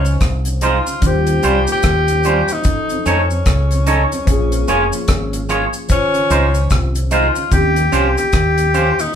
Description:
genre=lovers rock reggae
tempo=74 BPM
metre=4/4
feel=swing 61% on 16ths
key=unclear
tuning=A4 = 440 Hz
part: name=warm tenor saxophone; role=melody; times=0.0-9.2 s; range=Db4 to G4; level=-18 LUFS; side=left 2 dB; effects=none
part: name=tine electric piano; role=accompaniment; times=0.0-9.2 s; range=Eb3 to C5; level=-25 LUFS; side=left 2 dB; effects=phaser
part: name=deep dub fingered electric bass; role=bass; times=0.0-8.9 s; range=F1 to F2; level=-18 LUFS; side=equal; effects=none
part: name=deep reggae drum kit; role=drums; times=0.0-9.0 s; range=hi-hat, kick drum, rim click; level=-18 LUFS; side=equal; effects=none
part: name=tonewheel organ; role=accompaniment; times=0.1-9.1 s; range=Eb2 to Eb4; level=-28 LUFS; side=right 2 dB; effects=none
part: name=cabasa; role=percussion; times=0.1-9.1 s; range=none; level=-30 LUFS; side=left 2 dB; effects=none
part: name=twangy electric guitar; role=stabs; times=0.6-8.9 s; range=G3 to Db5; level=-18 LUFS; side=right 3 dB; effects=none
room=wet studio reverb, RT60 0.6 s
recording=band playing live in one room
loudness=-13 LUFS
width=side -8 dB against mid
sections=0.0-9.2 A section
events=none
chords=0.0 Dbmaj9; 1.0 Eb13; 2.6 F7b13; 4.3 Bbm7; 5.9 Dbmaj9; 7.5 Eb13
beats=0.21 1.02 1.83 | 2.65 3.46 4.27 5.08 | 5.90 6.71 7.52 8.33 | 9.14

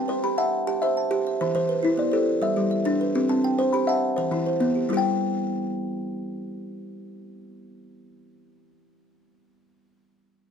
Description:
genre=southern african traditional, mbira-style interlocking cycle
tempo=137 BPM (dotted quarters)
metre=12/8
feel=straight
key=unclear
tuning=A4 = 440 Hz
part: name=buzzing kalimba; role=arpeggios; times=0.0-8.7 s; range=E3 to B5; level=-24 LUFS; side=left 4 dB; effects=none
part: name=kalimba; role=arpeggios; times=0.0-8.7 s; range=E3 to A5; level=-26 LUFS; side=right 6 dB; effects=none
room=moderate studio reverb, RT60 0.5 s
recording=dark, warm production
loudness=-22 LUFS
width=side -7 dB against mid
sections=0.0-4.9 A section; 4.9-8.4 B section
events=none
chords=0.0 C; 1.4 Em; 2.3 G; 3.2 C; 4.0 Em; 4.9 N.C.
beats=0.09 0.53 0.97 | 1.41 1.84 2.28 2.72 | 3.16 3.59 4.03 4.47 | 4.90 5.34 5.78 6.21 | 6.65 7.08 7.52 7.95

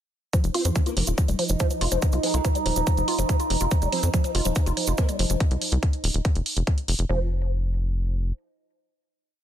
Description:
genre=psychedelic trance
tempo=142 BPM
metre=4/4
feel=straight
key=unclear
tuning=A4 = 441 Hz
part: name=overtone-sweeping drone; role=sustained chords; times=0.7-5.4 s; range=Eb4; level=-30 LUFS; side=right 4 dB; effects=chorus, built-in reverb, sidechain pumping
part: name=woody wave-folded pluck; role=riff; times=0.3-7.3 s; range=F3 to F4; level=-29 LUFS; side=moving between left 5 dB and right 3 dB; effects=chorus, auto-pan, sidechain pumping, ping-pong delay
part: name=electronic hi-hat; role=drums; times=0.3-7.1 s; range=none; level=-30 LUFS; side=right 1 dB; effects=none
part: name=electronic kick drum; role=drums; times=0.3-6.8 s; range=none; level=-22 LUFS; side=equal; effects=none
part: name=cabasa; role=percussion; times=0.3-5.4 s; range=none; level=-35 LUFS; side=right 6 dB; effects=none
part: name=tight sequencer bass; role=bass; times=0.4-8.3 s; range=Eb1 to F2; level=-24 LUFS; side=equal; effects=none
part: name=formant-sweep wobble bass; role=second line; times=0.5-5.1 s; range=Ab3 to C4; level=-38 LUFS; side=left 5 dB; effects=ensemble chorus, vintage 12-bit sampler grit, sidechain pumping, high-pass filter, digital delay
room=digital ambience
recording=dense, heavily limited modern master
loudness=-22 LUFS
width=side -11 dB against mid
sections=0.3-7.1 groove; 7.1-9.4 final note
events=filter sweep on synth arpeggio sound 0.3-5.4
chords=0.3 F5; 7.1 N.C.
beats=| 0.33 0.76 1.18 1.60 | 2.02 2.45 2.87 3.29 | 3.71 4.14 4.56 4.98 | 5.40 5.83 6.25 6.67 | 7.09 7.52 7.94

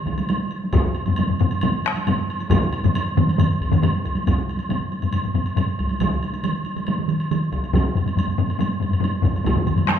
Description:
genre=japanese traditional, taiko drum ensemble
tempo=138 BPM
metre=4/4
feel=straight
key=none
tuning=none
part: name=taiko ensemble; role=percussion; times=0.1-10.0 s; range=none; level=-26 LUFS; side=right 1 dB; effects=none
part: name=taiko ensemble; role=percussion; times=0.1-10.0 s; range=none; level=-25 LUFS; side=right 3 dB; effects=none
part: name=taiko ensemble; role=percussion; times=0.1-9.6 s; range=none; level=-24 LUFS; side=equal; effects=none
part: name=woodblock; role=percussion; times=0.1-10.0 s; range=none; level=-30 LUFS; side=right 3 dB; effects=none
part: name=taiko ensemble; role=percussion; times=0.7-10.0 s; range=none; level=-22 LUFS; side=left 3 dB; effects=none
room=wet recital hall reverb, RT60 1.4 s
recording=minimal, uncompressed stereo recording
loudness=-19 LUFS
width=side -9 dB against mid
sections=0.0-4.3 A section; 4.3-10.0 B section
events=speeding up 0.0-10.0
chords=none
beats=0.30 | 0.74 1.19 1.63 2.07 | 2.51 2.95 3.39 3.83 | 4.27 4.71 5.14 5.58 | 6.01 6.44 6.88 7.31 | 7.74 8.17 8.60 9.03 | 9.45 9.88

